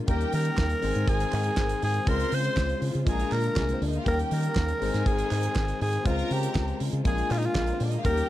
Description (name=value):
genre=disco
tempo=120 BPM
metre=4/4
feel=straight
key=Ab major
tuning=A4 = 437 Hz
part: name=barky tine electric piano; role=accompaniment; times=0.0-8.3 s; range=G3 to C5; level=-32 LUFS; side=left 8 dB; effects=none
part: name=rich studio string section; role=sustained chords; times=0.0-8.3 s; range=Db3 to C5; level=-38 LUFS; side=right 2 dB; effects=none
part: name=raspy alto saxophone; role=melody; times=0.1-8.3 s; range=Eb4 to C5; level=-30 LUFS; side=equal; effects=none
part: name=warm studio violin section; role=second line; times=0.1-8.3 s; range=Ab3 to C6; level=-36 LUFS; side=right 1 dB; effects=none
part: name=fingered electric bass with an envelope filter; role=bass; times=0.1-8.2 s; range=Ab1 to Eb3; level=-28 LUFS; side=equal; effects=none
part: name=damped 70s drum kit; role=drums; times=0.1-8.3 s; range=hi-hat, kick drum, snare drum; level=-30 LUFS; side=right 1 dB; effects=none
part: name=group handclap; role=percussion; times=0.6-7.7 s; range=none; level=-43 LUFS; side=right 7 dB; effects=none
room=small room ambience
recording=dark, warm production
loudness=-24 LUFS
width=side -14 dB against mid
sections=0.0-8.3 A section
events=none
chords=0.1 Eb7; 0.8 Ab; 2.1 Dbmaj7; 3.1 Bb7; 4.1 Eb7; 4.8 Ab; 6.1 Dbmaj7; 7.0 Bb7